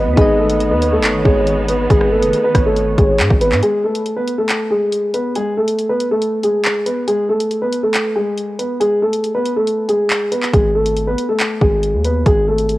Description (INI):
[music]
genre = hip hop, drill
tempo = 139 BPM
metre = 4/4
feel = half-time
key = G# phrygian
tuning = A4 = 438 Hz
[part]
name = dark concert grand piano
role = melody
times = 0.0-12.8 s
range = G#3 to B4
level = -16 LUFS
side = equal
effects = none
[part]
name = warm velvety synth lead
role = second line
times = 0.0-3.6 s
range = B4 to D#5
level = -21 LUFS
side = right 2 dB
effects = chorus, tape echo
[part]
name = soft electric-piano-like synth keys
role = accompaniment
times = 0.0-3.6 s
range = B3 to D#5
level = -22 LUFS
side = left 2 dB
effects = chorus
[part]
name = dark symphonic string section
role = sustained chords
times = 0.0-3.6 s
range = D#3 to B3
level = -26 LUFS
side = right 2 dB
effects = none
[part]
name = hard-hitting 808-style bass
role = bass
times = 0.0-3.6, 10.5-12.8 s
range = F#1 to G#2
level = -19 LUFS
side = equal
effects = none
[part]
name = drill drum kit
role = drums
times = 0.2-12.8 s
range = handclaps, hi-hat, kick drum, rim click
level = -17 LUFS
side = equal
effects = none
[sound]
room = little or no reverb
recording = home recording on cassette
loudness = -14 LUFS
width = side -17 dB against mid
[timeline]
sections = 0.0-3.6 A section; 3.6-12.8 B section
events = break 3.6-10.5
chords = 0.0 G#m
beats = | 0.17 0.61 1.04 1.47 | 1.90 2.33 2.76 3.20 | 3.63 4.06 4.49 4.92 | 5.35 5.79 6.22 6.65 | 7.08 7.51 7.94 8.38 | 8.81 9.24 9.67 10.10 | 10.53 10.96 11.40 11.83 | 12.26 12.69